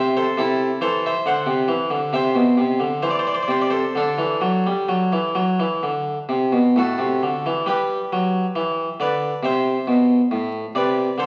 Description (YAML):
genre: classical, baroque-style suite movement for harpsichord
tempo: 66 BPM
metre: 4/4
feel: uneven beats, rubato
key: unclear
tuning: A4 = 440 Hz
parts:
  - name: harpsichord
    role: solo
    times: 0.0-11.3 s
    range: A2 to F#5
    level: -21 LUFS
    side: equal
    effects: none
room: wet recital hall reverb, RT60 1.3 s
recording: very old 78 rpm record, vinyl crackle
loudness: -21 LUFS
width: mono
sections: 0.0-7.7 A section; 7.7-11.3 B section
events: none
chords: 0.4 Am/C; 4.0 D5; 5.8 D; 7.7 G; 9.4 Am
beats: | 0.36 1.24 2.13 3.03 | 3.96 4.90 5.83 6.76 | 7.68 8.56 9.44 10.32 | 11.20